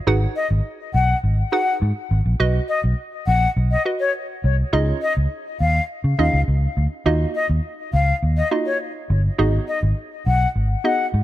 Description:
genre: dance-pop.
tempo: 103 BPM.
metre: 4/4.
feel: straight.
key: unclear.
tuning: A4 = 440 Hz.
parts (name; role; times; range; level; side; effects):
hollow square pluck; accompaniment; 0.1-11.2 s; Bb3 to Gb5; -24 LUFS; right 3 dB; chorus.
vintage muted fingered electric bass; bass; 0.1-11.2 s; G1 to Db3; -18 LUFS; equal; none.
breathy silver concert flute; melody; 0.4-11.1 s; Db5 to Gb5; -23 LUFS; left 4 dB; ping-pong delay.
room: small room ambience.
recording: none.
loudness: -18 LUFS.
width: side -14 dB against mid.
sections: 0.0-11.2 A section.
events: none.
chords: 0.1 Abm7; 2.4 B; 4.7 Dbadd9; 7.1 Ebmadd9; 9.4 Abm7.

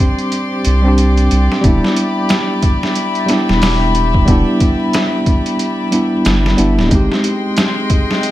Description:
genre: trip hop.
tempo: 91 BPM.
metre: 4/4.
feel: swing 59% on 16ths.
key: unclear.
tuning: A4 = 438 Hz.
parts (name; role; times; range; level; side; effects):
tine electric piano; accompaniment; 0.0-8.3 s; G3 to G4; -16 LUFS; equal; harmonic tremolo, vintage 12-bit sampler grit, tape echo.
rich chamber string section; sustained chords; 0.0-8.3 s; G#3 to C6; -20 LUFS; left 3 dB; none.
trip hop sampler-style drum kit; drums; 0.2-8.3 s; hi-hat, kick drum, snare drum; -16 LUFS; equal; overdrive.
round analog bass; bass; 0.7-7.1 s; D1 to C2; -14 LUFS; equal; none.
room: light reverb, digital ambience.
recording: vinyl crackle.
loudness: -12 LUFS.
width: side -14 dB against mid.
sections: 0.0-8.3 A section.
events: none.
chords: 0.0 Csus2; 1.6 Em7; 6.9 G#maj7.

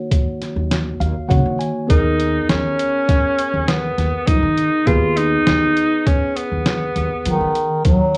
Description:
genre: progressive instrumental, band music in an uneven meter.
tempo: 101 BPM.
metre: 5/4.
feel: straight.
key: unclear.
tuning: A4 = 440 Hz.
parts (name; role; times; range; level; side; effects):
tine electric piano; accompaniment; 0.0-7.8 s; Eb3 to Ab5; -27 LUFS; equal; phaser, plate reverb.
trip hop sampler-style drum kit; drums; 0.1-8.2 s; hi-hat, kick drum, snare drum; -21 LUFS; equal; none.
upright bass; bass; 0.6-8.2 s; Eb2 to F3; -24 LUFS; equal; none.
bright alto saxophone; second line; 1.9-7.6 s; Cb4 to F4; -21 LUFS; equal; plate reverb.
mellow bass clarinet; melody; 7.3-8.2 s; Eb3 to Gb3; -19 LUFS; equal; plate reverb, tape echo.
room: moderate studio reverb, RT60 0.5 s.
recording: worn, warbling old tape, cassette tape, warbly pitch drift, small room ambience.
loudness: -18 LUFS.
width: mono.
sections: 0.0-7.9 A section.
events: tine electric piano fill 0.7-1.9.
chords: 0.0 Ebm7; 1.9 Abmadd9/Eb.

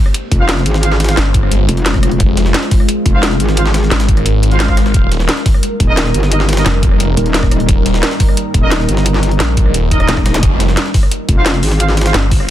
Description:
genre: dark technical drum and bass.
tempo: 175 BPM.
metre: 4/4.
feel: straight.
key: F minor.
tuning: A4 = 440 Hz.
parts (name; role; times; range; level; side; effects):
deep dark ambient pad; sustained chords; 0.0-12.5 s; G3 to C5; -20 LUFS; equal; chorus, built-in reverb, sidechain pumping.
drum and bass drum kit; drums; 0.1-12.5 s; hi-hat, rim click, snare drum; -18 LUFS; left 1 dB; none.
jungle sampler-style drum kit; drums; 0.1-12.4 s; hi-hat, snare drum; -24 LUFS; equal; high-pass filter on hats, high-pass filter on snare.
metallic wobble bass; bass; 0.3-12.1 s; Eb1 to Ab1; -14 LUFS; equal; distortion, chorus, tube saturation.
electronic kick drum; drums; 0.3-12.4 s; none; -13 LUFS; equal; none.
mellow brass ensemble; stabs; 0.4-12.1 s; Eb4 to F5; -21 LUFS; right 2 dB; digital delay.
snarling distorted saw bass; bass; 1.2-12.5 s; Eb1 to Bb1; -14 LUFS; equal; distortion, sidechain pumping.
zap; sound effects; 10.3-10.4 s; none; -22 LUFS; equal; none.
room: little or no reverb.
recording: dense, heavily limited modern master.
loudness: -10 LUFS.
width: side -12 dB against mid.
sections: 0.0-12.5 A section.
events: none.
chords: 0.0 Fm; 4.9 Eb; 10.4 Fm.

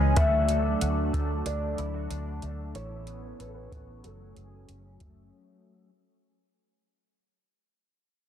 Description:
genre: dream pop.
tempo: 93 BPM.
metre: 4/4.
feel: straight.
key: F# minor.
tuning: A4 = 440 Hz.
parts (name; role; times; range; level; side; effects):
phased analog pad; sustained chords; 0.0-5.3 s; C#3 to G#5; -33 LUFS; right 3 dB; phaser, chorus, low-pass filter.
twelve-string electric guitar; arpeggios; 0.0-5.9 s; E3 to A4; -35 LUFS; left 5 dB; ensemble chorus, low-pass filter, digital delay.
vintage muted fingered electric bass; bass; 0.0-5.3 s; F#1 to D2; -31 LUFS; equal; none.
felt-muted upright piano; melody; 0.2-5.0 s; A4 to E5; -32 LUFS; left 3 dB; low-pass filter, digital delay.
soft vintage rhythm box; drums; 0.2-5.2 s; hi-hat, kick drum; -28 LUFS; equal; none.
room: moderate concert hall reverb, RT60 1.9 s.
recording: dense, heavily limited modern master.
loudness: -26 LUFS.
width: side -10 dB against mid.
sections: 0.0-5.3 A section.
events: fade-out 0.0-5.3; filter sweep 0.0-5.3.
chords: 0.2 D; 2.7 Aadd9; 4.0 F#madd9.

